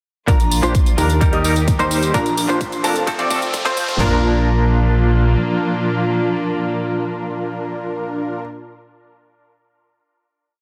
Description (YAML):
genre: EDM, festival progressive house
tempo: 129 BPM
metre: 4/4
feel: straight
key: Bb major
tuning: A4 = 441 Hz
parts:
  - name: direct-recorded clean electric guitar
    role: accompaniment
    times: 0.3-8.4 s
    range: Bb2 to C5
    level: -26 LUFS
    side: equal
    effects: tremolo, sidechain pumping
  - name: warm studio string section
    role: sustained chords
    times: 0.3-8.4 s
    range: Bb2 to Bb4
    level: -26 LUFS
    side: equal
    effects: sidechain pumping
  - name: warm grand piano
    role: arpeggios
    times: 0.3-8.4 s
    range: A5 to Eb6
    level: -29 LUFS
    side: equal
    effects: sidechain pumping, dub echo
  - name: supersaw stab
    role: riff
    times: 0.3-8.4 s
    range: C4 to Eb5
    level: -26 LUFS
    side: equal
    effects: sidechain pumping, low-pass filter, dub echo
  - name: fat analog bass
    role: bass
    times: 0.3-5.4 s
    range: F1 to F2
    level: -21 LUFS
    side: equal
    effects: sidechain pumping
  - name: big-room dance drum kit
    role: drums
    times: 0.3-4.1 s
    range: handclaps, kick drum, snare drum, toms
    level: -20 LUFS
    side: equal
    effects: none
  - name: electronic hi-hat and tambourine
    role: drums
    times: 0.3-4.0 s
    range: none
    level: -29 LUFS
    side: equal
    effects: high-pass filter on hats, high-pass filter on perc, high-pass filter on room
  - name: riser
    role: sound effects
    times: 2.3-4.0 s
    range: none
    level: -33 LUFS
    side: equal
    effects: none
room: moderate digital room reverb, RT60 1.0 s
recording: dense, heavily limited modern master, high-pass filter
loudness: -18 LUFS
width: mono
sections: 0.3-4.0 build; 4.0-7.7 final chord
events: build-up 0.3-4.0; filter sweep on supersaw synth 0.3-4.0; filter sweep 0.3-4.0; drum fill 2.1-4.0; riser 2.3-4.0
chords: 0.3 Bb; 1.2 Eb; 2.1 Bb; 3.1 F; 4.0 Bb